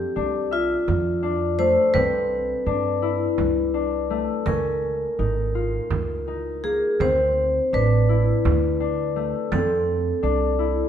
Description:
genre	contemporary instrumental, chamber music in an uneven meter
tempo	167 BPM (eighths)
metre	7/8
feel	straight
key	unclear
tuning	A4 = 441 Hz
part	vibraphone with medium mallets	second line	0.0-10.9 s	F4 to C5	-24 LUFS	right 1 dB	none
part	concert harp	arpeggios	0.0-10.9 s	A3 to E5	-26 LUFS	left 9 dB	none
part	upright bass	bass	0.0-10.8 s	Ab1 to G2	-26 LUFS	right 2 dB	none
part	frame drum	percussion	0.9-9.9 s	none	-29 LUFS	right 6 dB	none
room	moderate recital hall reverb, RT60 1.4 s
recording	none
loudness	-20 LUFS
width	side -9 dB against mid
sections	0.0-10.9 A section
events	none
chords	0.0 F6; 1.9 Cmaj9; 4.5 Dbadd9; 7.0 D5; 9.5 F6

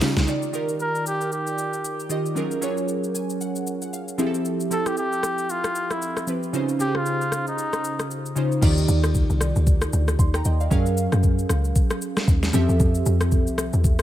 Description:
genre	amapiano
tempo	115 BPM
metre	4/4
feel	swing 58% on 16ths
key	unclear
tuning	A4 = 440 Hz
part	glassy digital keys	accompaniment	0.0-14.0 s	Db3 to C6	-25 LUFS	right 1 dB	chorus
part	smooth R&B drum kit	drums	0.0-14.0 s	crash cymbal, hi-hat, kick drum, rim click, shaker, snare drum	-24 LUFS	equal	none
part	deep log drum bass	bass	0.2-0.3, 8.6-14.0 s	C2 to Gb2	-21 LUFS	equal	none
part	trumpet with cup mute	melody	0.8-8.2 s	Eb4 to Bb4	-27 LUFS	equal	tape echo
room	light reverb, digital ambience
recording	none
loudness	-20 LUFS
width	side -12 dB against mid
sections	0.3-8.6 A section; 8.6-14.0 B section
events	drum fill 0.0; synth keys fill 2.9-4.5; drop 8.6-14.0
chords	0.3 Ebmaj9; 2.4 Gbmaj9; 4.2 Fmaj9; 6.5 Dbmaj9; 8.6 Ebmaj9; 10.7 Gbmaj9; 12.5 Fmaj9

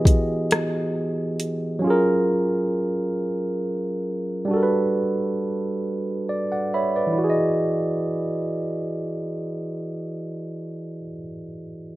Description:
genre	slow six-eight R&B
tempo	45 BPM (dotted quarters)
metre	6/8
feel	straight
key	E major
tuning	A4 = 440 Hz
part	barky tine electric piano	accompaniment	0.0-12.0 s	E3 to B5	-22 LUFS	right 1 dB	overdrive
part	smooth R&B drum kit	drums	0.1-1.6 s	hi-hat, kick drum, rim click	-18 LUFS	equal	none
room	light reverb, digital ambience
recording	rough home demo mix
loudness	-22 LUFS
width	side -17 dB against mid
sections	0.0-7.2 A section; 7.2-9.8 B section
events	tine electric piano fill 5.8-7.2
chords	0.0 Emaj9; 1.8 F#maj9; 4.5 Gmaj9; 7.2 Emaj9

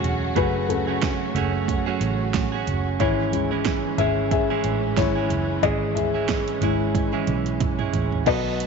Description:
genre	piano-driven pop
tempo	91 BPM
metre	4/4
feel	swing 56% on 16ths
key	unclear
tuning	A4 = 439 Hz
part	dark baby grand piano	accompaniment	0.0-8.7 s	B2 to E5	-25 LUFS	left 13 dB	none
part	rich studio string section	sustained chords	0.0-8.7 s	C#3 to F#4	-32 LUFS	left 2 dB	none
part	direct-recorded clean electric guitar	riff	0.0-8.7 s	G#2 to A4	-26 LUFS	right 15 dB	spring reverb
part	picked electric bass	bass	0.0-8.7 s	E1 to B1	-27 LUFS	right 1 dB	none
part	deep house drum kit	drums	0.0-8.7 s	crash cymbal, hi-hat, kick drum, snare drum, toms	-27 LUFS	right 5 dB	none
room	moderate plate reverb, RT60 2.3 s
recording	1960s-style stereo with parts hard left and right, nothing above 7.6 kHz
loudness	-20 LUFS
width	side -5 dB against mid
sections	0.0-8.3 A section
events	grand piano solo 0.0-8.3; drum fill 7.0-8.3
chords	0.0 F#madd9; 3.0 C#m

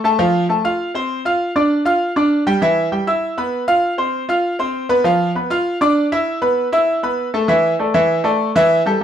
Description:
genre	latin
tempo	197 BPM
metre	4/4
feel	straight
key	unclear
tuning	A4 = 439 Hz
part	bright concert grand piano	solo	0.0-9.0 s	E3 to F6	-15 LUFS	equal	none
room	moderate studio reverb, RT60 0.5 s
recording	band playing live in one room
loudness	-15 LUFS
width	side -9 dB against mid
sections	0.0-7.5 A section; 7.5-9.0 B section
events	none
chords	0.2 F; 1.4 G5; 2.6 Em; 3.8 F5; 5.0 Dm69/F; 6.3 Asus2; 7.5 Dsus2

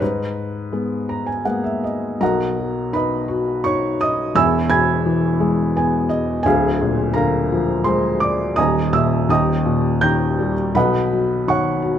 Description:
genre	classical, lyrical solo piano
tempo	84 BPM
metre	3/4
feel	rubato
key	unclear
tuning	A4 = 440 Hz
part	felt-muted upright piano	solo	0.0-12.0 s	D1 to G#6	-17 LUFS	equal	none
room	moderate recital hall reverb, RT60 1.3 s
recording	close, detailed microphones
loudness	-17 LUFS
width	side -9 dB against mid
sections	0.0-2.2 A section; 2.2-12.0 B section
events	felt piano fill 0.7-2.2, 5.4-6.5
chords	0.0 G#madd9; 2.2 B; 4.4 E; 6.5 A#7/D; 8.6 D#sus4; 9.3 D#; 10.8 Badd9

